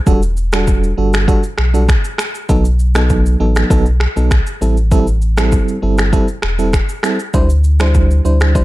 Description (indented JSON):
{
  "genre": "afrobeats",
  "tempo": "99 BPM",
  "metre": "4/4",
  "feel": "straight",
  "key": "E minor",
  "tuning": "A4 = 437 Hz",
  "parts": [
    { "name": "FM electric piano with tremolo", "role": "accompaniment", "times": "0.1-8.6 s", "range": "F#3 to C5", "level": "-17 LUFS", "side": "right 2 dB", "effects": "none" },
    { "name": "warm sub bass", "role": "bass", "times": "0.1-8.6 s", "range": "E1 to D2", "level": "-13 LUFS", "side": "equal", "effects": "none" },
    { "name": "afro-pop drum kit", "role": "drums", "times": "0.1-8.6 s", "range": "finger snaps, kick drum, rim click, shaker", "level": "-16 LUFS", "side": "equal", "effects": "overdrive" }
  ],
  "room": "little or no reverb",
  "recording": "dark, warm production",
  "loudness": "-11 LUFS",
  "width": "side -17 dB against mid",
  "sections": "0.0-8.6 A section",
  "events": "none",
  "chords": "0.1 Em11; 2.5 B7; 4.6 Am7; 7.3 D9sus4"
}